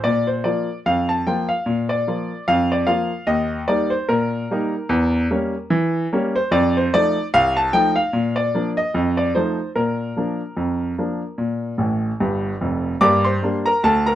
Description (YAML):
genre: ragtime piano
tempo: 74 BPM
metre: 2/4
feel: swing 56% on 16ths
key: Bb major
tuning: A4 = 440 Hz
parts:
  - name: clear baby grand piano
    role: solo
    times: 0.0-14.2 s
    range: F1 to D6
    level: -18 LUFS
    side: equal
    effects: none
room: light reverb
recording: none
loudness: -18 LUFS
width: side -12 dB against mid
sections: 0.0-13.0 A section; 13.0-14.2 B section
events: grand piano fill 11.8-13.0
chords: 0.0 Bb5; 3.3 Eb; 4.9 Edim7; 6.5 F7; 8.1 Bb; 8.9 F7; 9.8 Bb; 13.0 Gm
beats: | 0.04 0.86 | 1.67 2.48 | 3.29 4.10 | 4.91 5.72 | 6.52 7.33 | 8.14 8.95 | 9.76 10.58 | 11.39 12.21 | 13.03 13.84